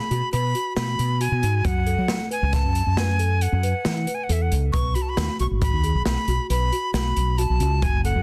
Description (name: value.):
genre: progressive instrumental, band music in an uneven meter.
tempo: 136 BPM.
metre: 7/4.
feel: straight.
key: unclear.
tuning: A4 = 439 Hz.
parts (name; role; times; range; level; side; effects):
breathy bright jazz flute; melody; 0.0-8.2 s; E5 to C#6; -29 LUFS; equal; plate reverb, tape echo.
celesta; arpeggios; 0.0-8.2 s; F#4 to B4; -34 LUFS; equal; plate reverb.
mellow fretless electric bass; bass; 0.1-8.2 s; F#1 to F#3; -25 LUFS; equal; lush chorus.
open jazz drum kit; drums; 0.1-8.1 s; hi-hat, kick drum, snare drum; -29 LUFS; equal; none.
room: light reverb.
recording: dense, heavily limited modern master.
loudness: -23 LUFS.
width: mono.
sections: 0.0-8.2 A section.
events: none.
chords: 0.0 B5; 1.6 F#sus4; 4.7 B5.